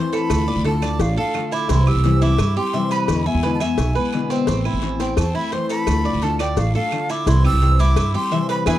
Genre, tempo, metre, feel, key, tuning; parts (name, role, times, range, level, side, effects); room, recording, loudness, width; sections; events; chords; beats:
latin, Cuban son and guajira; 172 BPM; 4/4; straight; A4 = 440 Hz
breathy jazz flute; melody; 0.0-8.8 s; F5 to E6; -26 LUFS; equal
picked steel-string acoustic guitar; accompaniment; 0.0-8.8 s; B2 to F4; -23 LUFS; left 4 dB
Cuban tres; arpeggios; 0.0-8.8 s; C4 to E5; -25 LUFS; right 5 dB
cowbell; percussion; 0.1-8.7 s; -30 LUFS; left 9 dB
guiro; percussion; 0.1-8.7 s; -38 LUFS; left 16 dB
maracas; percussion; 0.1-8.7 s; -40 LUFS; right 8 dB
upright bass; bass; 0.3-8.8 s; A1 to G2; -18 LUFS; right 1 dB
claves; percussion; 0.3-8.7 s; -33 LUFS; right 20 dB
little or no reverb; dry, close 1970s-style studio recording; -17 LUFS; side -13 dB against mid
0.0-8.8 A section
0.3 Dm; 1.7 C; 3.1 E7; 4.5 Am; 5.9 Dm; 7.3 C
| 0.30 0.65 1.00 1.35 | 1.69 2.04 2.39 2.74 | 3.09 3.43 3.78 4.13 | 4.48 4.83 5.18 5.53 | 5.87 6.22 6.57 6.92 | 7.27 7.62 7.97 8.31 | 8.66